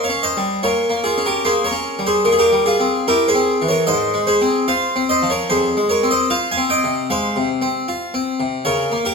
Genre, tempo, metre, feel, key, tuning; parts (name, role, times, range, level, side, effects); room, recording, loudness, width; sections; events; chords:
classical, baroque-style suite movement for harpsichord; 75 BPM; 4/4; rubato; F minor; A4 = 440 Hz
harpsichord; solo; 0.0-9.1 s; F2 to Ab5; -15 LUFS; equal
wet recital hall reverb, RT60 1.4 s; minimal, uncompressed stereo recording; -15 LUFS; side -4 dB against mid
0.0-9.1 A section
0.0 Gdim/Bb; 2.3 C7/Bb; 3.9 Fm/Ab; 5.5 Fm